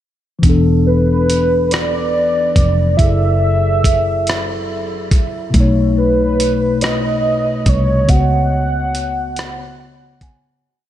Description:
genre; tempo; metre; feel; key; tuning
slow six-eight R&B; 47 BPM (dotted quarters); 6/8; straight; unclear; A4 = 442 Hz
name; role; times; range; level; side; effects
mellow tine electric piano; accompaniment; 0.4-10.7 s; B2 to G#5; -19 LUFS; left 3 dB; wide subtle chorus
vintage muted fingered electric bass; bass; 0.4-10.6 s; E1 to C#2; -17 LUFS; equal; none
dusty soul sampler-style drum kit; drums; 0.4-10.4 s; hi-hat, kick drum, rim click; -17 LUFS; equal; none
warm velvety synth lead; melody; 0.9-10.2 s; B4 to F#5; -18 LUFS; right 1 dB; chorus
room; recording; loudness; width
moderate huge ambient reverb, RT60 6.0 s; dreamy mix soaked in reverb; -13 LUFS; side -12 dB against mid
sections
0.4-10.6 verse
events
fade-out 8.1-10.6; tine electric piano fill 9.4-10.6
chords
0.4 E7sus4; 3.0 F#m9; 5.5 B9; 8.1 C#7sus4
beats
| 0.43 1.71 | 2.98 4.26 | 5.54 6.82 | 8.09 9.37

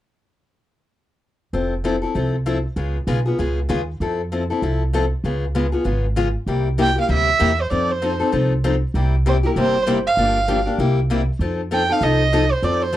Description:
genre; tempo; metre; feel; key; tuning
acoustic string swing (jazz manouche); 195 BPM; 4/4; swing 60% on 8ths; unclear; A4 = 440 Hz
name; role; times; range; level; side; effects
picked steel-string acoustic guitar; accompaniment; 1.5-13.0 s; C3 to A4; -21 LUFS; left 3 dB; none
upright bass; bass; 1.5-13.0 s; F1 to F2; -22 LUFS; right 1 dB; none
warm violin; melody; 6.8-13.0 s; Bb4 to G5; -20 LUFS; right 4 dB; none
room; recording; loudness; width
light reverb; dry, close 1970s-style studio recording; -17 LUFS; side -13 dB against mid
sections
1.5-6.5 A section; 6.5-13.0 B section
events
none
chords
1.5 Fmaj7; 2.8 Db7; 4.0 Fmaj7; 5.2 Db7; 6.5 C7; 7.7 F7; 8.9 C7; 10.2 Gm7; 10.8 C7; 11.4 F7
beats
| 1.53 1.84 2.15 2.46 | 2.77 3.08 3.39 3.69 | 4.00 4.31 4.62 4.93 | 5.24 5.55 5.86 6.17 | 6.47 6.78 7.09 7.40 | 7.71 8.02 8.32 8.63 | 8.94 9.25 9.56 9.86 | 10.17 10.48 10.79 11.10 | 11.40 11.71 12.02 12.33 | 12.63 12.94

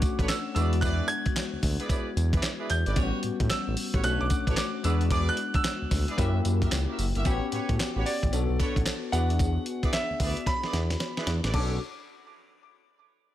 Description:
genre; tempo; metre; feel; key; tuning
R&B, new jack swing; 112 BPM; 4/4; swing 63% on 16ths; B minor; A4 = 440 Hz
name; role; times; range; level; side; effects
warm grand piano; melody; 0.0-11.8 s; D5 to G#6; -33 LUFS; right 2 dB; none
bell-like tine electric piano; accompaniment; 0.0-11.8 s; G3 to A4; -33 LUFS; left 6 dB; ensemble chorus
dusty soul sampler-style drum kit; drums; 0.0-11.7 s; crash cymbal, handclaps, hi-hat, kick drum, snare drum, tambourine; -29 LUFS; equal; none
warm horn section; stabs; 0.2-11.8 s; D4 to E5; -37 LUFS; right 3 dB; none
smooth synth bass; bass; 0.2-11.8 s; F#1 to A2; -27 LUFS; equal; none
cowbell; percussion; 0.3-11.8 s; none; -44 LUFS; right 9 dB; none
room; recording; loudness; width
digital ambience; none; -25 LUFS; side -13 dB against mid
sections
0.0-7.3 A section; 7.3-11.5 B section; 11.5-13.3 C section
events
drum fill 10.5-11.5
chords
0.0 Bm9; 0.6 E7; 3.0 A13; 4.0 Bm9; 4.8 E7; 6.2 F#7b9; 7.3 A13; 8.3 Bm9; 9.1 E7; 11.5 Bm9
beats
0.29 | 0.82 1.36 1.90 2.43 | 2.97 3.50 4.04 4.57 | 5.11 5.65 6.18 6.72 | 7.25 7.79 8.32 8.86 | 9.40 9.93 10.47 11.00 | 11.54

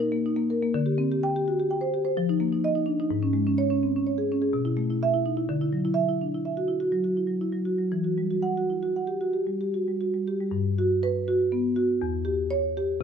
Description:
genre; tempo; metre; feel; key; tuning
classical, contemporary piece for solo marimba; 112-129 BPM; 5/4; rubato; E minor; A4 = 440 Hz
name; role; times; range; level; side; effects
marimba with soft mallets; solo; 0.0-13.0 s; E2 to G5; -24 LUFS; equal; none
room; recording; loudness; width
light reverb; close, detailed microphones; -24 LUFS; side -7 dB against mid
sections
0.0-10.5 A section; 10.5-13.0 B section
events
none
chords
0.0 Bmaj7; 0.7 D7sus4; 2.2 F7sus4; 3.1 G#sus4; 4.5 B7sus4; 5.5 Dadd9; 7.9 Emadd9; 10.5 Gmaj7; 12.0 Em6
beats
0.26 | 0.74 1.22 1.69 2.16 2.63 | 3.11 3.59 4.06 4.53 5.01 | 5.49 5.96 6.44 6.92 7.42 | 7.93 8.45 8.97 9.49 10.01 | 10.53 11.04 11.53 12.01 12.51 | 12.99

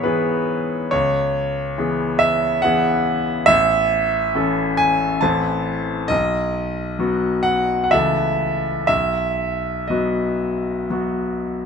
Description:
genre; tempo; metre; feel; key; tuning
classical, romantic character piece for solo piano; 59-71 BPM; 3/4; rubato; unclear; A4 = 439 Hz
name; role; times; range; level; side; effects
clear grand piano; solo; 0.0-11.7 s; A1 to A5; -17 LUFS; equal; none
room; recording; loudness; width
moderate recital hall reverb, RT60 1.8 s; close, detailed microphones; -17 LUFS; side -6 dB against mid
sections
0.0-11.7 A section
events
none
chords
0.0 E/G#; 0.9 C#m7; 3.5 A; 5.2 Am; 6.1 B; 7.9 A/C#; 8.9 B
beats
0.05 | 0.93 1.78 2.64 | 3.49 4.35 5.23 | 6.11 7.00 7.92 | 8.88 9.89 10.90

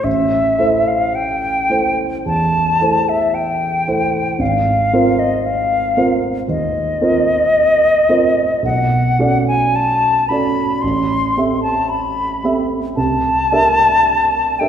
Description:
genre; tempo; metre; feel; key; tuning
classical, impressionist duo for flute and grand piano; 56 BPM; 4/4; rubato; unclear; A4 = 440 Hz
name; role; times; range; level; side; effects
bright concert flute; melody; 0.0-14.7 s; Eb5 to C6; -15 LUFS; left 1 dB; none
dark grand piano; accompaniment; 0.0-14.7 s; Ab1 to E5; -18 LUFS; right 2 dB; none
room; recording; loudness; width
wet scoring stage reverb, RT60 1.8 s; heard from further back in the room; -13 LUFS; side -8 dB against mid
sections
0.0-14.7 A section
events
none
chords
0.1 Am7; 4.4 Ab69; 8.6 Bm9; 10.8 Am7; 13.0 C13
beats
| 0.06 1.16 2.27 3.35 | 4.40 5.45 6.48 7.55 | 8.64 9.75 10.83 11.90 | 12.98 14.06

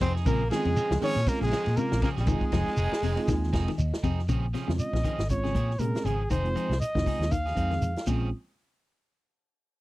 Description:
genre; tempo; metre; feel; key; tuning
afrobeat; 119 BPM; 4/4; swing 56% on 16ths; Bb minor; A4 = 439 Hz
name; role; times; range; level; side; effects
warm trumpet; melody; 0.0-8.1 s; Ab4 to F5; -31 LUFS; equal; none
raspy tenor saxophone; second line; 0.0-3.8 s; Ab3 to Db4; -37 LUFS; right 3 dB; none
electric guitar at the edge of break-up; arpeggios; 0.0-8.2 s; Bb2 to F3; -34 LUFS; left 5 dB; none
electric guitar at the edge of break-up; stabs; 0.0-8.3 s; F3 to Ab4; -37 LUFS; right 6 dB; none
vintage muted fingered electric bass; bass; 0.0-8.3 s; F1 to Bb2; -28 LUFS; equal; none
vintage drum kit; drums; 0.0-8.2 s; crash cymbal, hi-hat, kick drum, ride cymbal, snare drum; -32 LUFS; equal; none
shekere; percussion; 0.0-8.2 s; none; -31 LUFS; right 1 dB; none
mellow tine electric piano; accompaniment; 0.3-8.3 s; Ab3 to Ab5; -33 LUFS; right 3 dB; none
room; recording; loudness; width
little or no reverb; dry, close 1970s-style studio recording; -25 LUFS; side -18 dB against mid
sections
0.0-4.3 A section; 4.3-8.3 B section; 8.3-9.8 C section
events
tine electric piano fill 3.3-4.3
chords
0.3 Bbm9; 2.3 Fm7; 4.3 Bbm9; 6.3 Fm7; 8.1 Bbm9; 8.3 N.C.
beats
| 0.26 0.76 1.26 1.77 | 2.27 2.78 3.28 3.79 | 4.29 4.79 5.30 5.80 | 6.31 6.81 7.32 7.82

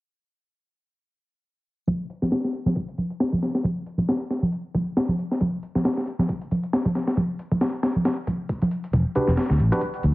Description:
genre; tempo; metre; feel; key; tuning
breakbeat, breaks; 136 BPM; 4/4; swing 56% on 16ths; unclear; A4 = 443 Hz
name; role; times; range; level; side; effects
breakbeat sampler-style drum kit; drums; 1.9-10.1 s; hi-hat, kick drum, snare drum; -25 LUFS; left 1 dB; high-pass filter on hats, small room ambience, high-pass filter on kick, high-pass filter on snare
congas; percussion; 1.9-10.1 s; none; -25 LUFS; right 1 dB; none
fingered electric bass; bass; 8.9-10.1 s; E1 to D2; -19 LUFS; equal; none
tine electric piano; stabs; 9.2-9.8 s; D4 to B4; -25 LUFS; equal; overdrive, dub echo
room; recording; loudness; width
light reverb; heavily compressed radio sound, multiband compression, low-pass filter, nothing above 7.7 kHz; -22 LUFS; side -19 dB against mid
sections
1.9-10.1 A section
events
filter sweep 1.9-10.1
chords
1.9 N.C.; 8.7 Em7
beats
| 1.88 2.32 2.76 3.20 | 3.64 4.08 4.53 4.97 | 5.41 5.85 6.29 6.73 | 7.17 7.61 8.05 8.50 | 8.94 9.38 9.82

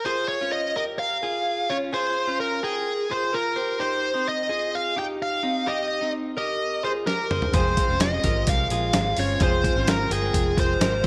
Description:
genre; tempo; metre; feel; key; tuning
jangly indie pop; 128 BPM; 4/4; straight; F minor; A4 = 436 Hz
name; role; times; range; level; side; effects
smooth overdriven lead guitar; melody; 0.0-11.1 s; Ab4 to G5; -27 LUFS; equal; none
direct-recorded clean electric guitar; arpeggios; 0.1-11.1 s; C4 to G5; -32 LUFS; equal; lush chorus
dusty soul sampler-style drum kit; drums; 7.1-11.1 s; hi-hat, kick drum, snare drum, toms; -26 LUFS; equal; none
clear upright piano; accompaniment; 7.5-11.1 s; C4 to C5; -38 LUFS; equal; none
electric guitar through a small old amp; accompaniment; 7.5-11.1 s; F3 to F4; -35 LUFS; equal; none
vintage muted fingered electric bass; bass; 7.5-11.1 s; F1 to C2; -30 LUFS; equal; none
room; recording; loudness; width
moderate recital hall reverb, RT60 1.6 s; none; -24 LUFS; mono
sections
0.1-11.1 A section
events
drum fill 7.1-7.5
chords
0.1 Fm; 3.6 Cm; 7.5 Fm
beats
| 0.06 0.52 0.99 1.46 | 1.93 2.40 2.86 3.33 | 3.80 4.27 4.73 5.20 | 5.67 6.14 6.60 7.07 | 7.54 8.01 8.47 8.94 | 9.41 9.88 10.34 10.81

